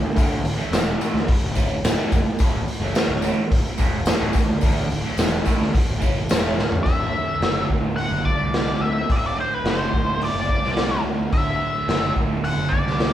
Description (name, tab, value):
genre	psychedelic rock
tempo	108 BPM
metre	4/4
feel	straight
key	D mixolydian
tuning	A4 = 439 Hz
part	fuzz picked electric bass	bass	0.0-13.1 s	D1 to D2	-27 LUFS	equal	overdrive
part	fuzz guitar	riff	0.2-13.1 s	D2 to A3	-28 LUFS	right 2 dB	distortion, phaser
part	raw garage drum kit	drums	0.2-13.1 s	hi-hat, kick drum, snare drum, toms	-21 LUFS	equal	none
part	tambourine	percussion	0.2-6.4 s	none	-40 LUFS	left 7 dB	none
part	octave-fuzz lead guitar	melody	6.8-13.1 s	B4 to F#5	-24 LUFS	left 1 dB	wah, distortion
room	light reverb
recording	band playing live in one room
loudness	-19 LUFS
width	side -12 dB against mid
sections	0.0-6.9 A section; 6.9-13.1 B section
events	drum fill 6.6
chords	0.0 A5/D; 6.9 Dadd9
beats	| 0.16 0.72 1.28 1.84 | 2.40 2.96 3.51 4.07 | 4.63 5.18 5.74 6.30 | 6.86 7.41 7.97 8.53 | 9.09 9.65 10.21 10.76 | 11.32 11.88 12.44 12.99